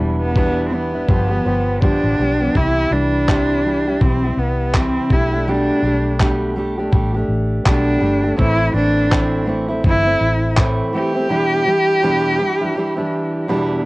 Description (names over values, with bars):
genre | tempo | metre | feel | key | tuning
acoustic pop | 82 BPM | 4/4 | swing 60% on 16ths | C major | A4 = 439 Hz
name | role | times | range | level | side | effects
warm cello | melody | 0.0-13.5 s | G3 to G4 | -19 LUFS | equal | cassette tape
fingerpicked steel-string acoustic guitar | accompaniment | 0.0-13.9 s | E2 to G4 | -20 LUFS | right 1 dB | cassette tape
vintage muted fingered electric bass | bass | 0.0-10.8 s | E1 to C2 | -21 LUFS | equal | tube saturation
dusty soul sampler-style drum kit | drums | 0.4-10.8 s | handclaps, kick drum | -16 LUFS | equal | cassette tape
room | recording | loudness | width
little or no reverb | home recording on cassette | -15 LUFS | side -22 dB against mid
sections
0.0-2.5 A section; 2.5-13.9 B section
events
none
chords
0.0 Em7; 1.1 G7; 2.5 C; 5.1 Gadd9/B; 8.4 Am; 11.3 Em7